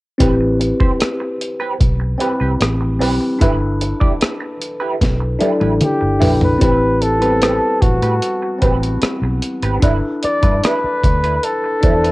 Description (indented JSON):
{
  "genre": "lush 1970s-style soul",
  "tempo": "75 BPM",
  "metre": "4/4",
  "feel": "straight",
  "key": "A dorian",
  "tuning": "A4 = 440 Hz",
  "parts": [
    { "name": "tine electric piano", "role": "accompaniment", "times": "0.2-12.1 s", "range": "G3 to D5", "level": "-19 LUFS", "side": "left 1 dB", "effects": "phaser" },
    { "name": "electric guitar through a small old amp", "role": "riff", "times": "0.2-12.1 s", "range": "C4 to D5", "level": "-24 LUFS", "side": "right 4 dB", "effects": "wah" },
    { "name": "vintage muted fingered electric bass", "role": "bass", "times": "0.2-12.1 s", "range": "G1 to A2", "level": "-19 LUFS", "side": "equal", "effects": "none" },
    { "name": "breakbeat sampler-style drum kit", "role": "drums", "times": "0.2-12.1 s", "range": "hi-hat, kick drum, rim click, snare drum, toms", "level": "-17 LUFS", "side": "equal", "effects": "cassette tape" },
    { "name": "breathy flugelhorn", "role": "melody", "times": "5.8-12.1 s", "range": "F#4 to D5", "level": "-18 LUFS", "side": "left 1 dB", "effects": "cassette tape, analog delay" }
  ],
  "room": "digital ambience",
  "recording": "home recording on cassette",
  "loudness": "-14 LUFS",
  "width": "side -20 dB against mid",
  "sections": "0.2-6.6 A section; 6.6-12.1 B section",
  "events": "drum fill 5.0-6.6",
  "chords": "0.2 Am9; 3.4 G6; 6.6 Am9; 9.8 G6",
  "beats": "| 0.20 1.00 1.81 2.61 | 3.41 4.21 5.01 5.82 | 6.62 7.42 8.22 9.03 | 9.83 10.63 11.43"
}